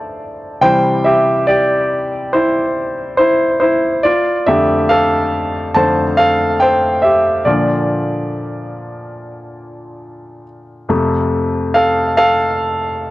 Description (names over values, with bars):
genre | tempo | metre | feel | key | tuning
pop | 70 BPM | 4/4 | straight | unclear | A4 = 440 Hz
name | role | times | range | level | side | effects
clear concert grand piano | solo | 0.0-13.1 s | F2 to A5 | -13 LUFS | equal | cassette tape, tape echo
room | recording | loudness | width
moderate booth ambience, RT60 0.2 s | home recording on cassette | -12 LUFS | side -18 dB against mid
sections
0.0-10.9 A section; 10.9-13.1 B section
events
grand piano solo 0.0-10.9, 10.9-13.1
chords
0.0 Dm; 0.6 C; 4.0 F6; 7.5 Bb; 10.9 F